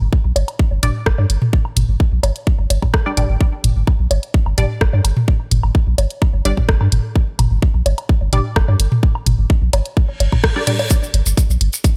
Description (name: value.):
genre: minimal techno.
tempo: 128 BPM.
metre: 4/4.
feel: straight.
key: G minor.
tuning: A4 = 440 Hz.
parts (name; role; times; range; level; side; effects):
punchy sub bass; bass; 0.0-11.7 s; G1 to G2; -18 LUFS; equal; tube saturation, sidechain pumping.
electronic kick drum; drums; 0.1-11.9 s; none; -17 LUFS; equal; studio reverb.
garage drum kit; drums; 0.4-11.9 s; hi-hat, rim click; -24 LUFS; equal; studio reverb.
electronic bongos, woodblock and toms; percussion; 0.4-10.9 s; none; -23 LUFS; equal; studio reverb.
filtered dub chord stab; stabs; 0.8-10.8 s; G3 to D5; -28 LUFS; equal; phaser, cassette tape, tape echo.
reverse cymbal; sound effects; 10.1-10.9 s; none; -30 LUFS; equal; none.
maracas; percussion; 10.9-11.9 s; none; -26 LUFS; equal; none.
room: digital ambience.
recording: none.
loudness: -16 LUFS.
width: mono.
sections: 0.0-10.9 A section; 10.9-12.0 B section.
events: reverse cymbal 10.1-10.9; band accent 10.4; drop 10.9-12.0.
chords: 0.0 G5.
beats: 0.12 0.59 1.06 | 1.53 2.00 2.47 2.94 | 3.41 3.88 4.34 4.81 | 5.28 5.75 6.22 6.69 | 7.16 7.62 8.09 8.56 | 9.03 9.50 9.97 10.44 | 10.91 11.38 11.84.